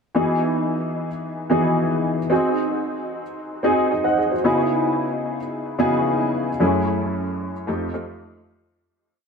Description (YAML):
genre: pop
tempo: 112 BPM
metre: 4/4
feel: straight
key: E major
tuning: A4 = 439 Hz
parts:
  - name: warm grand piano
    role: solo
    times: 0.1-8.8 s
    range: F2 to F#5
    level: -19 LUFS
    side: equal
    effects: ensemble chorus, tape echo
room: moderate lush hall reverb, RT60 2.8 s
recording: none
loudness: -19 LUFS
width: side -5 dB against mid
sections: 0.2-8.8 verse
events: fade-out 6.6-8.8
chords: 0.2 Emaj9; 2.3 G#7; 4.5 C#m11; 6.6 F#m7; 7.7 F9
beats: | 0.15 0.69 1.23 1.77 | 2.31 2.84 3.38 3.92 | 4.46 4.99 5.53 6.07 | 6.60 7.14 7.68 8.21